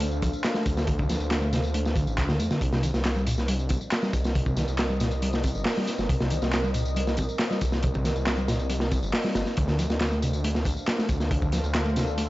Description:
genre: breakbeat, breaks.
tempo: 138 BPM.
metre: 4/4.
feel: straight.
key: C dorian.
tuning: A4 = 439 Hz.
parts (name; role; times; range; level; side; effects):
deep dark ambient pad; sustained chords; 0.0-12.3 s; C4 to F5; -34 LUFS; equal; chorus, built-in reverb, sidechain pumping.
hollow-body short-scale picked electric bass; riff; 0.0-12.2 s; Bb2 to D4; -30 LUFS; equal; tube saturation, analog delay.
detuned saw bass; bass; 0.0-12.3 s; G1 to F2; -28 LUFS; equal; none.
crunchy breakbeat drum kit; drums; 0.0-12.3 s; hi-hat, kick drum, snare drum; -27 LUFS; equal; none.
electronic tambourine and handclaps; drums; 0.0-12.3 s; none; -35 LUFS; equal; none.
room: small room ambience.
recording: dry, gritty hardware recording, vinyl crackle, nothing above 7.6 kHz.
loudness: -23 LUFS.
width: side -17 dB against mid.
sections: 0.0-12.3 A section.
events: none.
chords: 0.0 Dm7; 2.6 Cm9; 9.6 Dm7.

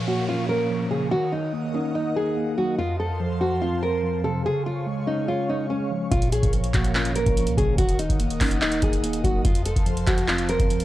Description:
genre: hip hop, trap.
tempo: 144 BPM.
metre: 4/4.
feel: half-time.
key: Bb minor.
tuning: A4 = 440 Hz.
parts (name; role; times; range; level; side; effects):
mellow tine electric piano; accompaniment; 0.0-10.8 s; F2 to Eb5; -26 LUFS; equal; medium stereo tremolo, low-pass filter.
airy breathy pad; sustained chords; 0.0-10.8 s; Ab4 to Eb6; -34 LUFS; right 2 dB; chorus.
downlifter; sound effects; 0.0-2.8 s; none; -39 LUFS; equal; none.
nylon-string guitar; melody; 0.1-10.8 s; Db4 to Bb4; -26 LUFS; equal; low-pass filter.
clean 808-style bass; bass; 6.1-10.8 s; Eb1 to Db2; -27 LUFS; equal; none.
booming analog drum machine; drums; 6.1-10.8 s; handclaps, hi-hat, kick drum; -23 LUFS; equal; none.
room: little or no reverb.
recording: dry, gritty hardware recording, transformer saturation, cassette tape.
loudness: -21 LUFS.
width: side -14 dB against mid.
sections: 0.0-10.8 A section.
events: none.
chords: 0.0 Bbm; 1.1 Ebm; 2.8 F; 4.4 Db; 6.1 Bbm; 7.8 Ebm; 9.4 F.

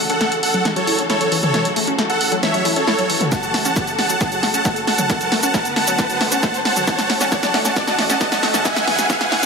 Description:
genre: uplifting trance.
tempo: 135 BPM.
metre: 4/4.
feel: straight.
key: unclear.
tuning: A4 = 440 Hz.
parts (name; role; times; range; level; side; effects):
warm studio string section; sustained chords; 0.0-9.5 s; C#3 to A4; -26 LUFS; left 1 dB; sidechain pumping.
wide unison pluck; arpeggios; 0.0-9.5 s; E3 to E4; -25 LUFS; left 1 dB; sidechain pumping, dub echo.
riser; sound effects; 0.1-9.5 s; none; -26 LUFS; right 1 dB; none.
supersaw chords; melody; 0.1-9.5 s; A4 to A5; -19 LUFS; right 1 dB; sidechain pumping, ping-pong delay.
punchy analog drum machine; drums; 0.1-9.5 s; hi-hat, shaker, snare drum, toms; -21 LUFS; equal; sidechain pumping on hats, sidechain pumping on toms, sidechain pumping on perc.
electronic kick drum; drums; 3.3-9.2 s; none; -25 LUFS; equal; none.
room: moderate huge ambient reverb, RT60 6.0 s.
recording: high-pass filter.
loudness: -15 LUFS.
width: side -5 dB against mid.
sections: 0.0-9.5 A section.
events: build-up 0.0-9.5; drum fill 0.0-9.5; filter sweep on synth pluck 0.0-9.5; riser 0.1-9.5.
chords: 0.0 A6; 5.1 Bm7; 6.9 F#m7; 8.7 E7.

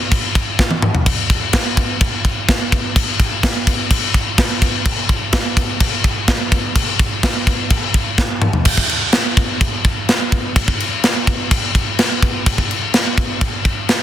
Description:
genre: metal.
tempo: 126 BPM.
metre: 4/4.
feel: straight.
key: none.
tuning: none.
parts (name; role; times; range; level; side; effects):
tight metal drum kit; drums; 0.1-14.0 s; crash cymbal, kick drum, snare drum, toms; -14 LUFS; equal; none.
room: light reverb.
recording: dense, heavily limited modern master.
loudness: -14 LUFS.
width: side -11 dB against mid.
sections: 0.0-8.7 A section; 8.7-14.0 B section.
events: drum fill 0.6-1.1, 8.2-8.7.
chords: none.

